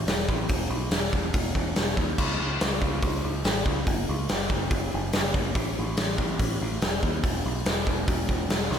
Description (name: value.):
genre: classic rock.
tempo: 142 BPM.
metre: 4/4.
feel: straight.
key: unclear.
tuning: A4 = 440 Hz.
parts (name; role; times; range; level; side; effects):
growling picked electric bass; bass; 0.0-8.8 s; E1 to D#2; -30 LUFS; equal; overdrive.
big rock drum kit; drums; 0.1-8.8 s; crash cymbal, hi-hat, kick drum, snare drum; -25 LUFS; equal; none.
room: little or no reverb.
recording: none.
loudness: -24 LUFS.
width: side -8 dB against mid.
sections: 0.0-8.8 A section.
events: none.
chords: none.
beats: 0.07 | 0.49 0.92 1.34 1.76 | 2.18 2.60 3.02 3.44 | 3.87 4.29 4.71 5.13 | 5.55 5.97 6.40 6.82 | 7.24 7.66 8.08 8.51.